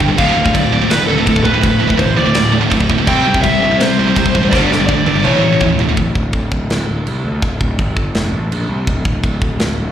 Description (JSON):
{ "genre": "heavy metal", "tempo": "166 BPM", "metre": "4/4", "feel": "straight", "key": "D minor from 6.0 s", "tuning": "A4 = 440 Hz", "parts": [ { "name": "distorted electric guitar", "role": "riff", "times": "0.0-6.0 s", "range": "D2 to C4", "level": "-18 LUFS", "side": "left 7 dB", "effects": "distortion" }, { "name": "heavy high-gain guitar", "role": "riff", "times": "0.0-6.0 s", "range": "D2 to C4", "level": "-16 LUFS", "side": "right 10 dB", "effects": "distortion, slapback echo" }, { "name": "fuzz picked electric bass", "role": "bass", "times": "0.0-9.9 s", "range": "D1 to D2", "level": "-18 LUFS", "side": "equal", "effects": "overdrive" }, { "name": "tight metal drum kit", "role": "drums", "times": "0.0-9.7 s", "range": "china cymbal, crash cymbal, kick drum, snare drum, toms", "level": "-18 LUFS", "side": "equal", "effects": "none" }, { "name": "bluesy overdriven lead guitar", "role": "melody", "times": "0.2-5.6 s", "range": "A4 to G5", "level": "-17 LUFS", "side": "left 1 dB", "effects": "distortion, slapback echo, tape echo" } ], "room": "light reverb", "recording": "live gig heard through the venue's PA, recital hall reverb", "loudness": "-12 LUFS", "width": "side -10 dB against mid", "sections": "0.0-6.0 A section; 6.0-9.9 B section", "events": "drum fill 4.5-6.0", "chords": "0.2 D5; 3.1 C; 4.5 G5; 5.2 A; 6.0 Dsus4; 8.1 F; 8.5 Bbsus2; 8.9 N.C." }